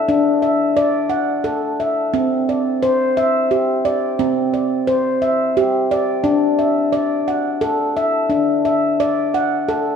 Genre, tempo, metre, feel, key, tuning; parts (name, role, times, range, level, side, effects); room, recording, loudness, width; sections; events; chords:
world meditative, meditative tuned percussion; 58 BPM (dotted quarters); 6/8; straight; A4 = 439 Hz
handpan; solo; 0.0-10.0 s; C4 to F#5; -15 LUFS; left 1 dB
wet scoring stage reverb, RT60 1.6 s; -15 LUFS; side -7 dB against mid
0.0-10.0 A section
0.0 D; 2.1 C; 6.2 D